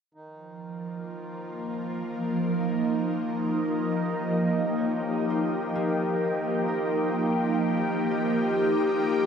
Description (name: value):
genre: ambient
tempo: free time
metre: none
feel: none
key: Eb mixolydian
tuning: A4 = 440 Hz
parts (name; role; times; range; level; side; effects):
- hand-pumped harmonium; drone; 0.1-9.3 s; Eb3 to Eb4; -39 LUFS; right 2 dB; none
- ethereal airy pad; sustained chords; 0.6-9.3 s; F3 to G4; -25 LUFS; equal; ensemble chorus, built-in reverb, phaser, shimmer reverb
- concert harp; arpeggios; 2.6-9.3 s; Bb3 to Db5; -36 LUFS; left 2 dB; tape echo, shimmer reverb
room: wet huge ambient reverb, RT60 8.0 s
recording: none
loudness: -24 LUFS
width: side -7 dB against mid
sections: 0.1-9.3 A section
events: fade-in on harp 0.1-9.3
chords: 0.1 Eb7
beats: free time